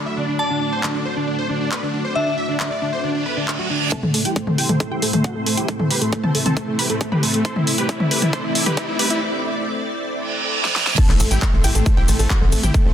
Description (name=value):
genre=uplifting trance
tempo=136 BPM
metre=4/4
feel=straight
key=unclear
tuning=A4 = 438 Hz
part: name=dense compressed supersaw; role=melody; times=0.0-12.9 s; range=A3 to E5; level=-24 LUFS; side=equal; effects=cassette tape, sidechain pumping, low-pass filter, tape echo
part: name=glassy synth bell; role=second line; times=0.0-3.8 s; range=E5 to B5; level=-26 LUFS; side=left 2 dB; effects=chorus, tape echo
part: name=analog string pad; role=sustained chords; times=0.0-12.9 s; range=A3 to D5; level=-26 LUFS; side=equal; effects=ensemble chorus, sidechain pumping
part: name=big-room dance drum kit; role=drums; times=0.8-12.8 s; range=crash cymbal, handclaps, hi-hat, shaker, snare drum, toms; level=-22 LUFS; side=left 1 dB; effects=overdrive
part: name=reverse cymbal, riser and impact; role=sound effects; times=3.2-12.7 s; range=none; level=-27 LUFS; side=right 3 dB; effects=none
part: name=wide unison pluck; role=second line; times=3.9-12.9 s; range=A4 to C6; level=-29 LUFS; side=right 1 dB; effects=sidechain pumping, tape echo
part: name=electronic kick drum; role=drums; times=3.9-12.8 s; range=none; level=-18 LUFS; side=equal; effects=overdrive, high-pass filter on kick
part: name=tight sequencer bass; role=bass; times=11.1-12.9 s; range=A1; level=-19 LUFS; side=equal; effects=sidechain pumping
room=light reverb, digital ambience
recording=dense, heavily limited modern master, high-pass filter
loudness=-17 LUFS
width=side -10 dB against mid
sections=0.0-3.9 A section; 3.9-11.0 B section; 11.0-12.9 C section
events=reverse cymbal 3.2-3.9, 10.2-11.0; build-up 3.9-11.0; filter sweep on supersaw synth 3.9-11.0; filter sweep 3.9-11.0; drum fill 7.5-9.2, 10.6-11.0; break 9.2-11.0; drop 11.0-12.9; impact 11.0-12.7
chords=0.0 D; 3.9 Am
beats=| 0.39 0.83 1.27 1.72 | 2.16 2.60 3.04 3.48 | 3.92 4.36 4.80 5.24 | 5.68 6.13 6.57 7.01 | 7.45 7.89 8.33 8.77 | 9.21 9.66 10.10 10.54 | 10.98 11.42 11.86 12.30 | 12.74